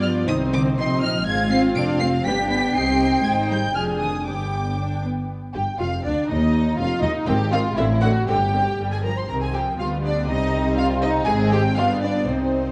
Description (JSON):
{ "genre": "quick classical-period movement for string orchestra", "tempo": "121 BPM", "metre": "2/4", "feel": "straight", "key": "unclear", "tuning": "A4 = 444 Hz", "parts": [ { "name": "dark studio violin section", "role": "melody", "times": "0.0-12.7 s", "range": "C5 to D7", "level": "-29 LUFS", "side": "equal", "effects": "none" }, { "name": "dark studio violin section", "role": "second line", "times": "0.0-12.7 s", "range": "C4 to Ab5", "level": "-28 LUFS", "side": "equal", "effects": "none" }, { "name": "rich studio viola section", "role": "accompaniment", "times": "0.0-12.7 s", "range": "D3 to C5", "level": "-28 LUFS", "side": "equal", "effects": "none" }, { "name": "dark studio cello section", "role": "bass", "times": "0.0-12.7 s", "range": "D2 to D4", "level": "-27 LUFS", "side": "equal", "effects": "none" }, { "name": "rich studio double bass section", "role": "bass", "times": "0.0-12.7 s", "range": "F1 to G2", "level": "-28 LUFS", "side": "equal", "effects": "none" } ], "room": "moderate concert hall reverb, RT60 1.9 s", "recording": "dark, warm production, nothing above 10.6 kHz", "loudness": "-21 LUFS", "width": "mono", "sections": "0.0-5.3 A section; 5.3-12.7 B section", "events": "none", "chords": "0.3 Cm; 1.3 Fm/Ab; 2.3 G; 2.7 Cm; 3.2 Ab; 3.8 Ddim/F; 4.3 G; 5.3 N.C.; 5.8 Dm/F; 6.3 Ebsus2; 7.3 Ab; 7.8 D7/A; 8.3 Gsus4; 8.8 Abmaj13/G; 9.3 Cm; 9.8 G7/D; 10.3 Cm; 11.3 Ab; 11.8 G7" }